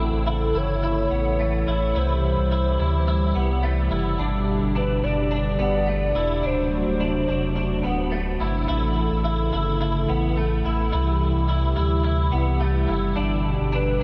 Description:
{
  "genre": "dream pop",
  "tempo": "107 BPM",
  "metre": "4/4",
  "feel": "straight",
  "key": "G major",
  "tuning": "A4 = 441 Hz",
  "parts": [
    { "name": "hollow soft pad", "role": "sustained chords", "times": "0.0-14.0 s", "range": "B2 to A4", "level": "-28 LUFS", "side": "equal", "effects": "chorus" },
    { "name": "semi-hollow electric guitar", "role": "arpeggios", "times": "0.0-14.0 s", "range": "A3 to E4", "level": "-30 LUFS", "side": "equal", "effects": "ensemble chorus, tape echo" },
    { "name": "sub bass with octave", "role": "bass", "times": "0.0-14.0 s", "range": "D1 to D2", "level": "-26 LUFS", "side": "equal", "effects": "none" },
    { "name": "warbly nostalgic lead", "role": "melody", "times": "0.3-8.1, 13.7-14.0 s", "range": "A4 to D5", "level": "-30 LUFS", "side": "equal", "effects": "chorus, tape echo" }
  ],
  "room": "moderate huge ambient reverb, RT60 7.2 s",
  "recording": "dreamy mix soaked in reverb",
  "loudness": "-23 LUFS",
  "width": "mono",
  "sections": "0.0-14.0 A section",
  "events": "none",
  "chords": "0.0 A; 2.0 C; 4.2 G; 6.4 D7; 8.7 A; 10.9 C; 13.2 G"
}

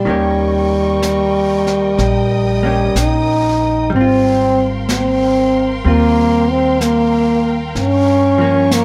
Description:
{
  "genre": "jazz ballad",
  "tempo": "62 BPM",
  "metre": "4/4",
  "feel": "swing 66% on 8ths",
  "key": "Ab major from 3.9 s",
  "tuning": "A4 = 439 Hz",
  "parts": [
    { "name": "breathy trombone", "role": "melody", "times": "0.0-8.8 s", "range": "G3 to Eb4", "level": "-16 LUFS", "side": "equal", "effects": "none" },
    { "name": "hollow-body jazz guitar", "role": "accompaniment", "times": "0.0-8.8 s", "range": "Eb3 to G4", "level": "-24 LUFS", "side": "equal", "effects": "none" },
    { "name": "dark studio string section", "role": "sustained chords", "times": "0.0-8.8 s", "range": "Bb4 to Eb6", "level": "-29 LUFS", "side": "equal", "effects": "none" },
    { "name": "upright bass", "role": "bass", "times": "0.0-8.8 s", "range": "Ab1 to G2", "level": "-22 LUFS", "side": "equal", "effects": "none" },
    { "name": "jazz brush drum kit", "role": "drums", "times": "0.1-8.8 s", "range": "brushed snare drum, hi-hat, snare drum", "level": "-28 LUFS", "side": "equal", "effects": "none" }
  ],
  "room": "little or no reverb",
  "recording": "none",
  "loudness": "-14 LUFS",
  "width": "mono",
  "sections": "0.0-3.9 A section; 3.9-8.8 B section",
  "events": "none",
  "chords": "0.1 Eb7; 3.9 Abmaj13; 7.8 Gm7b5"
}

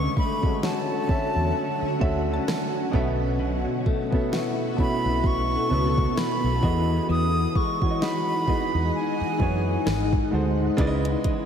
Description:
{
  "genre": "contemporary R&B",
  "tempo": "65 BPM",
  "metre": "4/4",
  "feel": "swing 58% on 16ths",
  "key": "E major",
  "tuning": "A4 = 439 Hz",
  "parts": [
    { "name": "breathy silver concert flute", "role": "melody", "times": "0.0-10.3 s", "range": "G#5 to D#6", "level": "-29 LUFS", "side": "right 1 dB", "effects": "ping-pong delay" },
    { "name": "clear baby grand piano", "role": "accompaniment", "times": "0.0-11.5 s", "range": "G#2 to E5", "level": "-29 LUFS", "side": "right 2 dB", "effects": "none" },
    { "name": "granular cloud pad", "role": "sustained chords", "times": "0.0-11.5 s", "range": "C#3 to F#5", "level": "-30 LUFS", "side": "equal", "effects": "built-in reverb, ensemble chorus, sidechain pumping" },
    { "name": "direct-recorded clean electric guitar", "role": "arpeggios", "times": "0.0-11.5 s", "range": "G#2 to F#4", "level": "-30 LUFS", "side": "left 5 dB", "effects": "ensemble chorus, ping-pong delay" },
    { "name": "vintage muted fingered electric bass", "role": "bass", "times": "0.0-11.1 s", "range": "G#1 to F#2", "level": "-26 LUFS", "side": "equal", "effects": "none" },
    { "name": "smooth R&B drum kit", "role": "drums", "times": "0.2-11.5 s", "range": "hi-hat, kick drum, rim click, snare drum", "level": "-27 LUFS", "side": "equal", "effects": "none" },
    { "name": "mallet-like synth pluck", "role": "texture", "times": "2.0-3.3 s", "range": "E5 to A5", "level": "-38 LUFS", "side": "right 2 dB", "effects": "chorus, ping-pong delay" }
  ],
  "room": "wet lush hall reverb, RT60 2.7 s",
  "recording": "dreamy mix soaked in reverb",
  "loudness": "-22 LUFS",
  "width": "side -8 dB against mid",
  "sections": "0.0-11.5 A section",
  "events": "break 0.0-10.8",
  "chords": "0.0 Dmaj7; 2.9 B7sus4; 6.6 Emaj9; 9.9 G#7b9; 10.8 C#m9"
}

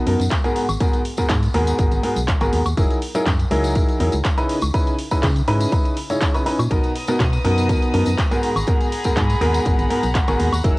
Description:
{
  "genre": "piano house",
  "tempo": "122 BPM",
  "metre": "4/4",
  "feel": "straight",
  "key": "unclear",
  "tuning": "A4 = 442 Hz",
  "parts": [
    { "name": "clear upright piano", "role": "riff", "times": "0.0-10.8 s", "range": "G#2 to C#5", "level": "-21 LUFS", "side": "equal", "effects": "sidechain pumping, low-pass filter, cassette tape, tape echo" },
    { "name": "organ-like FM bass", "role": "bass", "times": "0.1-10.7 s", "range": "F#1 to C#3", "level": "-21 LUFS", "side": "equal", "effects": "sidechain pumping" },
    { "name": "house drum kit", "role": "drums", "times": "0.1-10.7 s", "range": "handclaps, hi-hat, woodblock", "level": "-27 LUFS", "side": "equal", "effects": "overdrive, cassette tape" },
    { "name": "tambourine", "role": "percussion", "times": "0.2-10.7 s", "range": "none", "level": "-35 LUFS", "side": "left 2 dB", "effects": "none" },
    { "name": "electronic kick drum", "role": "drums", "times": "0.3-10.7 s", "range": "none", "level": "-20 LUFS", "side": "equal", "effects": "overdrive, cassette tape" },
    { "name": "warm studio violin section", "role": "sustained chords", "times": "6.7-10.8 s", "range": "G#4 to E6", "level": "-27 LUFS", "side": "equal", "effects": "sidechain pumping, cassette tape" }
  ],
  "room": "light reverb",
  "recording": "home recording on cassette",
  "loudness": "-17 LUFS",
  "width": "side -21 dB against mid",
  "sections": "0.0-10.8 A section",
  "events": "none",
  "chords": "0.0 Bmaj7; 0.6 G#m9; 2.8 F#13; 4.5 C#m9; 6.7 Bmaj7; 8.4 G#m9"
}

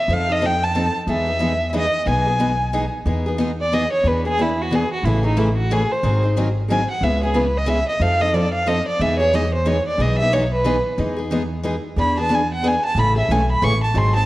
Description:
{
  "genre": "acoustic string swing (jazz manouche)",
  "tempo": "182 BPM",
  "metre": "3/4",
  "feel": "swing 59% on 8ths",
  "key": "E major",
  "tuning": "A4 = 440 Hz",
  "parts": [
    { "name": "dark violin", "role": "melody", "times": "0.0-14.3 s", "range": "D#4 to C#6", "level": "-20 LUFS", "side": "right 1 dB", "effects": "none" },
    { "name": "picked steel-string acoustic guitar", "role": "accompaniment", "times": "0.1-14.3 s", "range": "C#3 to A4", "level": "-24 LUFS", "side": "left 2 dB", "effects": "none" },
    { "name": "picked steel-string acoustic guitar", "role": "accompaniment", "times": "0.1-14.2 s", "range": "C#3 to B4", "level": "-28 LUFS", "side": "right 2 dB", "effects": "none" },
    { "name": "upright bass", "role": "bass", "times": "0.1-14.3 s", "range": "G#1 to F2", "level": "-22 LUFS", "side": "equal", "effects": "none" }
  ],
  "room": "moderate scoring stage reverb, RT60 1.9 s",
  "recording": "worn, warbling old tape, cassette tape, warbly pitch drift",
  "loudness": "-17 LUFS",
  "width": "side -17 dB against mid",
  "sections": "0.0-3.1 A section; 3.1-11.0 B section; 11.0-14.3 B section",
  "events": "violin solo 3.1-14.3",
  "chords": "0.1 F7; 1.1 Emaj7; 4.0 E7; 5.0 Amaj7; 6.0 G#7; 7.0 C#m7; 8.0 F7; 9.0 Emaj7; 12.0 E7; 13.0 Amaj7"
}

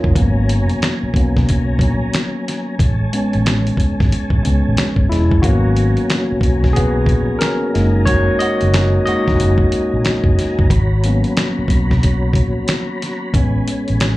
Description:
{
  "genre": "R&B, neo-soul",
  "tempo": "91 BPM",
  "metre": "4/4",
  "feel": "swing 63% on 16ths",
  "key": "G# minor",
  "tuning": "A4 = 440 Hz",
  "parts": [
    { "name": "barky tine electric piano", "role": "accompaniment", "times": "0.0-14.2 s", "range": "F#3 to D#5", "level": "-19 LUFS", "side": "left 1 dB", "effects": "slapback echo" },
    { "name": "mellow tonewheel organ", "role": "sustained chords", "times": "0.0-14.2 s", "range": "F#3 to B5", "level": "-27 LUFS", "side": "equal", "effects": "chorus vibrato, slow rotary speaker" },
    { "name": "vintage muted fingered electric bass", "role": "bass", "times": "0.0-14.2 s", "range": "E1 to C#2", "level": "-16 LUFS", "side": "equal", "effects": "none" },
    { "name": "dusty soul sampler-style drum kit", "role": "drums", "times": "0.0-14.2 s", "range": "finger snaps, hi-hat, kick drum, snare drum", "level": "-18 LUFS", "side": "equal", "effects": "none" }
  ],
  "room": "light reverb",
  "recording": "live gig heard through the venue's PA, club reverb",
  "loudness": "-14 LUFS",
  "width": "side -18 dB against mid",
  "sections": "0.0-14.2 A section",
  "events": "tine electric piano solo 0.0-14.2",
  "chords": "0.2 G#m11; 2.8 Amaj9; 5.4 G#m11; 7.7 F#69; 10.7 G#m11; 13.3 Amaj9"
}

